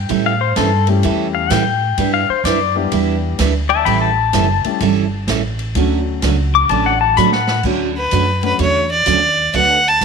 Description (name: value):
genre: country, western swing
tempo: 127 BPM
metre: 4/4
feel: swing 67% on 8ths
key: D major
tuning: A4 = 440 Hz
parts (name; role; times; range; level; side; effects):
- pedal steel guitar; second line; 0.0-7.6 s; A4 to D6; -16 LUFS; left 10 dB; none
- upright bass; bass; 0.0-10.0 s; F#1 to A2; -19 LUFS; right 1 dB; none
- picked steel-string acoustic guitar; accompaniment; 0.1-10.0 s; D3 to B4; -20 LUFS; right 14 dB; none
- swinging big-band drum kit; drums; 0.1-10.0 s; crash cymbal, hi-hat, kick drum, ride cymbal, snare drum; -26 LUFS; equal; none
- warm upright piano; accompaniment; 0.9-8.6 s; F#3 to G4; -23 LUFS; left 13 dB; none
- clear fiddle; melody; 8.0-10.0 s; B4 to A5; -14 LUFS; equal; none
room: moderate echo chamber reverb, RT60 1.4 s, small room ambience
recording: 1960s-style stereo with parts hard left and right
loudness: -13 LUFS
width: side -5 dB against mid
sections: 0.0-7.6 A section; 7.6-10.0 B section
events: pedal steel guitar solo 0.0-7.6; drum fill 7.2-7.6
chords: 0.1 A7; 2.0 Em7; 3.9 A7; 5.8 Dmaj7; 9.5 Bm7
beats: | 0.10 0.57 1.04 1.51 | 1.98 2.45 2.92 3.39 | 3.86 4.33 4.81 5.28 | 5.75 6.22 6.70 7.17 | 7.64 8.12 8.59 9.06 | 9.54 10.01